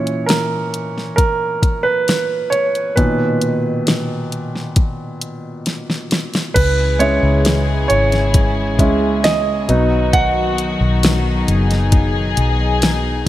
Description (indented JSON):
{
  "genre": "pop ballad",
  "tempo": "67 BPM",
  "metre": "4/4",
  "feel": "straight",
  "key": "B major",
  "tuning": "A4 = 440 Hz",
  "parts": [
    { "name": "clear baby grand piano", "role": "accompaniment", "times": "0.0-13.3 s", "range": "A#2 to F#5", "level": "-18 LUFS", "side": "right 2 dB", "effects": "none" },
    { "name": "smooth R&B drum kit", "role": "drums", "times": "0.1-13.0 s", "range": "crash cymbal, hi-hat, kick drum, snare drum", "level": "-17 LUFS", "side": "left 1 dB", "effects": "none" },
    { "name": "warm studio string section", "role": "sustained chords", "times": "6.5-13.3 s", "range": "B2 to G#4", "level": "-21 LUFS", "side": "left 2 dB", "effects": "none" },
    { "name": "vintage muted fingered electric bass", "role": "bass", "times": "6.6-13.2 s", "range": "F#1 to C#2", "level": "-18 LUFS", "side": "left 1 dB", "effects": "none" }
  ],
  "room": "light reverb, digital ambience",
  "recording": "none",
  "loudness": "-14 LUFS",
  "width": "side -14 dB against mid",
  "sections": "0.0-6.6 A section; 6.6-13.3 B section",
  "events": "grand piano solo 0.0-6.6, 6.6-13.3; drum fill 5.7-6.6",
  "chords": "0.0 A#dim; 3.0 Bmaj7; 6.6 C#m; 9.7 B"
}